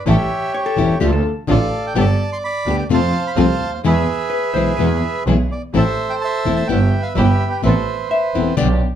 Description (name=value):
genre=tango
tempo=127 BPM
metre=4/4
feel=rubato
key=A minor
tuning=A4 = 440 Hz
part: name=bandoneon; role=melody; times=0.0-8.6 s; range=G4 to C6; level=-21 LUFS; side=right 3 dB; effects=none
part: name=nylon-string guitar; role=accompaniment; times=0.1-8.7 s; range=B2 to G4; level=-19 LUFS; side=left 5 dB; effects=none
part: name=muted studio string section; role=stabs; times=0.1-8.8 s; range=B3 to A4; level=-27 LUFS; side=right 3 dB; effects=none
part: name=clear double bass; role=bass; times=0.1-8.8 s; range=E1 to F2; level=-18 LUFS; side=right 1 dB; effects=none
part: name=vintage hollow-body jazz guitar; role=second line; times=0.5-1.3, 4.3-9.0 s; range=G4 to E5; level=-22 LUFS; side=left 3 dB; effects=none
room=moderate club reverb, RT60 0.7 s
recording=dark, warm production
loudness=-15 LUFS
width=side -10 dB against mid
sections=0.0-9.0 A section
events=none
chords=0.1 A7; 1.0 Dm; 2.0 Gadd9; 2.9 F; 3.8 E; 5.7 Am; 6.7 Em/G; 7.6 Amadd9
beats=| 0.07 0.54 1.01 1.48 | 1.95 2.42 2.89 3.37 | 3.83 4.31 4.78 5.26 | 5.74 6.22 6.69 7.17 | 7.64 8.12 8.59